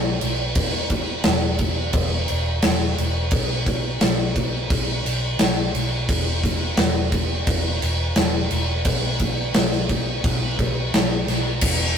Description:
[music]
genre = rock, shoegaze and dream pop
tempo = 87 BPM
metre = 4/4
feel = straight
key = unclear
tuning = A4 = 439 Hz
[part]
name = vintage muted fingered electric bass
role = bass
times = 0.0-12.0 s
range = E1 to B1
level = -25 LUFS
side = equal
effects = none
[part]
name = big rock drum kit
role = drums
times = 0.2-11.8 s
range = crash cymbal, kick drum, snare drum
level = -20 LUFS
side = equal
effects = none
[sound]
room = light reverb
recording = rough rehearsal-room recording, warm saturation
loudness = -19 LUFS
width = side -7 dB against mid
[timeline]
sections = 0.0-11.6 A section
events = none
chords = none

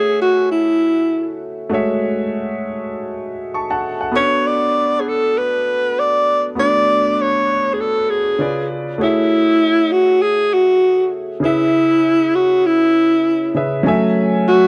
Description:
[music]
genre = soul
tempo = 99 BPM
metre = 4/4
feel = swing 54% on 16ths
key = F# minor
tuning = A4 = 440 Hz
[part]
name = breathy alto saxophone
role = melody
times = 0.0-14.7 s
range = E4 to D5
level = -16 LUFS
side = equal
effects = none
[part]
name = clear concert grand piano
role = accompaniment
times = 0.0-14.7 s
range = C#3 to C#6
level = -23 LUFS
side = equal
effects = none
[sound]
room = light reverb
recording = none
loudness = -16 LUFS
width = mono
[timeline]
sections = 0.0-13.9 A section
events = none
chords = 0.0 F#m9/A; 4.1 Bm7; 8.4 C#7b9; 9.0 F#m9/A; 11.4 C#m7; 13.9 F#m9

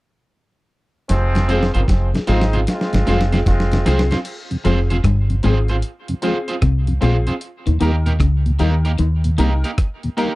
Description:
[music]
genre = roots reggae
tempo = 76 BPM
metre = 4/4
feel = swing 65% on 16ths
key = F minor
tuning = A4 = 445 Hz
[part]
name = clear trombone section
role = second line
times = 1.1-4.1 s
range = Eb3 to F4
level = -25 LUFS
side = equal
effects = dub echo
[part]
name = deep dub fingered electric bass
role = bass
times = 1.1-9.6 s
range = F1 to Eb2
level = -17 LUFS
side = equal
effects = none
[part]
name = dusty soul sampler-style drum kit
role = drums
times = 1.1-10.4 s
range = crash cymbal, hi-hat, kick drum, rim click, snare drum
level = -22 LUFS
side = equal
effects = none
[part]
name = mellow tonewheel organ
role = accompaniment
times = 1.4-10.3 s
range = Eb2 to Eb4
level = -22 LUFS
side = left 1 dB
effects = chorus vibrato, slow rotary speaker
[part]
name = electric guitar at the edge of break-up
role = accompaniment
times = 1.5-10.3 s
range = Bb3 to C5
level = -25 LUFS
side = right 3 dB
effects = dub echo
[part]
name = clear upright piano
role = stabs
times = 1.5-10.4 s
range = C4 to Bb4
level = -25 LUFS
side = left 3 dB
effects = none
[part]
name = electric guitar at the edge of break-up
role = riff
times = 4.6-9.5 s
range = F2 to Eb3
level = -22 LUFS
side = left 3 dB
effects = none
[sound]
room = little or no reverb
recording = dry, close 1970s-style studio recording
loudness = -15 LUFS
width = side -20 dB against mid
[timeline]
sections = 1.1-4.3 A section; 4.3-10.4 B section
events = drum fill 1.1-4.3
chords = 1.1 Fm; 7.4 Eb

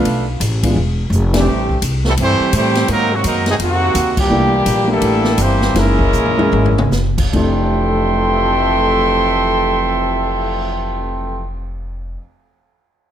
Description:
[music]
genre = jazz, big band swing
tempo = 143-169 BPM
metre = 4/4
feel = swing 63% on 8ths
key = F major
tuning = A4 = 440 Hz
[part]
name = warm trumpet section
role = melody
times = 0.0-11.5 s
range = Gb3 to C6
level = -17 LUFS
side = equal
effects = none
[part]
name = warm trombone section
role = second line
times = 0.0-11.5 s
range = F2 to Gb4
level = -21 LUFS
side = right 2 dB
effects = none
[part]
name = warm grand piano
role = accompaniment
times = 0.0-1.5, 4.3-12.2 s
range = F2 to Eb5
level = -21 LUFS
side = equal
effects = none
[part]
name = upright bass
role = bass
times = 0.0-12.1 s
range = E1 to A2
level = -18 LUFS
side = equal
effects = none
[part]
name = swinging big-band drum kit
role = drums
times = 0.1-10.6 s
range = crash cymbal, cymbal swell, hi-hat, kick drum, ride cymbal, snare drum, toms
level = -22 LUFS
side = left 1 dB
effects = none
[sound]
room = light reverb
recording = none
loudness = -13 LUFS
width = side -10 dB against mid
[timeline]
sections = 0.0-1.5 A section; 1.5-7.3 B section; 7.3-10.7 C section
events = drum fill 1.1-1.5, 6.1-6.9; band accent 1.3, 4.1; slowing down 4.3-7.3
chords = 0.1 Bm7b5; 0.8 Fmaj13/E; 1.5 Am7; 2.9 Ab9; 4.3 C13; 5.8 Gb13; 7.3 Fmaj13

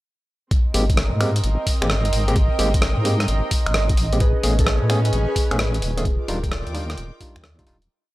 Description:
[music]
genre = UK garage, two-step garage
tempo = 130 BPM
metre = 4/4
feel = swing 66% on 16ths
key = unclear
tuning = A4 = 440 Hz
[part]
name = warm analog pad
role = sustained chords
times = 0.5-7.9 s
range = Eb5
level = -30 LUFS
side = right 6 dB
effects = chorus, sidechain pumping
[part]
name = boom bap sampler-style drum kit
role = drums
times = 0.5-7.9 s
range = finger snaps, hi-hat, rim click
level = -26 LUFS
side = equal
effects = none
[part]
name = electronic kick drum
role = drums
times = 0.5-7.7 s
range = none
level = -20 LUFS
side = equal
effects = none
[part]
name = warm studio string section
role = texture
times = 0.5-7.9 s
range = C4 to D6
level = -34 LUFS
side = equal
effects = sidechain pumping
[part]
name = overdriven tine electric piano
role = stabs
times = 0.7-7.8 s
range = G3 to G#4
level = -27 LUFS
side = equal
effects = analog delay
[part]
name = deep soft wobble bass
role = bass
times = 0.7-7.9 s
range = Eb1 to A2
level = -21 LUFS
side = equal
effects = chorus
[part]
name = concert harp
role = melody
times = 4.2-8.1 s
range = C#4 to Eb5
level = -28 LUFS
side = left 1 dB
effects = none
[sound]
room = little or no reverb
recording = dry, gritty hardware recording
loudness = -18 LUFS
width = side -17 dB against mid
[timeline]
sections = 0.5-7.9 drop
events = drop 0.5-7.9; fade-out 5.4-7.9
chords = 0.5 Abmaj9; 4.2 Amaj9; 6.1 Ebmaj9

